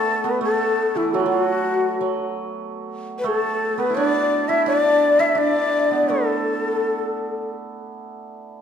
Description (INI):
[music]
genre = chinese traditional, Chinese chamber ensemble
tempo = 84 BPM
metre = 4/4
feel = rubato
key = D gong mode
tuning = A4 = 440 Hz
[part]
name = breathy shakuhachi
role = melody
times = 0.0-7.5 s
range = E4 to E5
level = -21 LUFS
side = left 3 dB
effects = none
[part]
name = breathy xiao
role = second line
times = 0.0-7.5 s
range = F#4 to E5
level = -24 LUFS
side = left 4 dB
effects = none
[part]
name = hammered dulcimer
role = second line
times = 0.0-8.6 s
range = E3 to E4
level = -24 LUFS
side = right 6 dB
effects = none
[sound]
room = wet recital hall reverb, RT60 1.5 s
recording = dark, warm production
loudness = -18 LUFS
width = side -8 dB against mid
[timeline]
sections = 0.0-8.6 A section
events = none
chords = none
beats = | 0.42 1.13 1.84 2.55 | 3.26 3.97 4.68 5.39 | 6.10 6.82 7.54 8.27